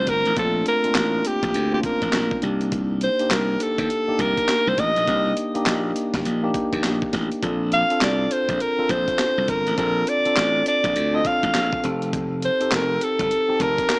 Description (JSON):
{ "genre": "R&B, new jack swing", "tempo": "102 BPM", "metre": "4/4", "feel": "swing 62% on 16ths", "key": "unclear", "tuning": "A4 = 440 Hz", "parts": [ { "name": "bright alto saxophone", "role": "melody", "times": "0.0-14.0 s", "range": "G4 to F5", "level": "-21 LUFS", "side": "equal", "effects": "none" }, { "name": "mellow tine electric piano", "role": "accompaniment", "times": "0.0-14.0 s", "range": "A3 to A5", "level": "-25 LUFS", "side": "equal", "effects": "none" }, { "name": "glassy slap bass", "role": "bass", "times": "0.0-13.8 s", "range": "F1 to Eb2", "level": "-25 LUFS", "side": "equal", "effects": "none" }, { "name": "breakbeat sampler-style drum kit", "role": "drums", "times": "0.1-14.0 s", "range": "handclaps, hi-hat, kick drum, snare drum", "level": "-27 LUFS", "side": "equal", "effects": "none" } ], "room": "little or no reverb", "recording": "small speaker sound", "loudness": "-19 LUFS", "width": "side -29 dB against mid", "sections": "0.0-14.0 A section", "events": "none", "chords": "0.0 Bbmaj7; 2.4 Cm7; 7.4 Bbmaj7; 11.8 F7", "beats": "| 0.37 0.95 1.54 2.13 | 2.72 3.31 3.90 4.48 | 5.07 5.66 6.25 6.84 | 7.42 8.01 8.60 9.19 | 9.78 10.37 10.96 11.54 | 12.13 12.72 13.31 13.90" }